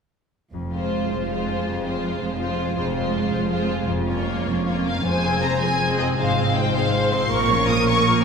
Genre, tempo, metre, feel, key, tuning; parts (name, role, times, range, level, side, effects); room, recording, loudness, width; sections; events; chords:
classical; 107 BPM (dotted quarters); 6/8; rubato; F minor; A4 = 440 Hz
concert harp; arpeggios; 0.5-8.2 s; F2 to F5; -27 LUFS; left 3 dB
rich symphonic double bass section; bass; 0.5-8.2 s; F1 to Bb1; -29 LUFS; right 3 dB
warm symphonic cello section; bass; 0.5-8.2 s; F2 to Bb2; -27 LUFS; right 2 dB
clear symphonic violin section; melody; 0.7-8.2 s; C5 to Eb6; -25 LUFS; left 1 dB
rich symphonic violin section; second line; 0.7-8.2 s; F4 to C5; -28 LUFS; left 1 dB
rich symphonic viola section; accompaniment; 0.7-8.2 s; Ab3 to Db5; -27 LUFS; right 2 dB
wet church reverb, RT60 4.0 s; minimal, uncompressed stereo recording; -20 LUFS; side -6 dB against mid
0.5-5.1 A section; 5.1-8.2 B section
0.5 Fm; 3.9 Bbm/F; 5.1 Fm; 6.2 Fm/Ab; 7.3 Bbm